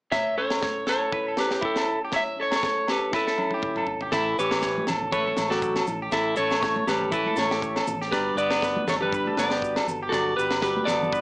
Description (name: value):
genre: highlife guitar band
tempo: 120 BPM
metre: 4/4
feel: swing 54% on 16ths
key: A mixolydian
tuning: A4 = 442 Hz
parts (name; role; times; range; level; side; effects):
- clean electric guitar; melody; 0.1-11.2 s; E4 to E5; -25 LUFS; equal; none
- flamenco guitar; accompaniment; 0.1-11.2 s; A2 to C#5; -35 LUFS; left 1 dB; none
- electric guitar at the edge of break-up; arpeggios; 0.1-11.2 s; G4 to E5; -30 LUFS; right 1 dB; slapback echo
- tight funk drum kit; drums; 0.1-11.2 s; crash cymbal, kick drum, snare drum, toms; -31 LUFS; equal; none
- agogo bells; percussion; 0.1-11.0 s; none; -33 LUFS; left 1 dB; none
- fingered electric bass; bass; 4.1-11.2 s; G1 to A1; -38 LUFS; equal; none
- maracas; percussion; 4.1-11.2 s; none; -47 LUFS; left 2 dB; none
- trombone with metal mute; second line; 4.2-11.2 s; E3 to B3; -32 LUFS; left 1 dB; none
- congas; percussion; 4.8-11.1 s; none; -35 LUFS; equal; none
room: moderate studio reverb, RT60 0.5 s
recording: small speaker sound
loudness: -22 LUFS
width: side -25 dB against mid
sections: 0.1-4.1 A section; 4.1-11.2 B section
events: drum fill 3.1-4.1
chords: 0.1 A; 8.1 Gmaj7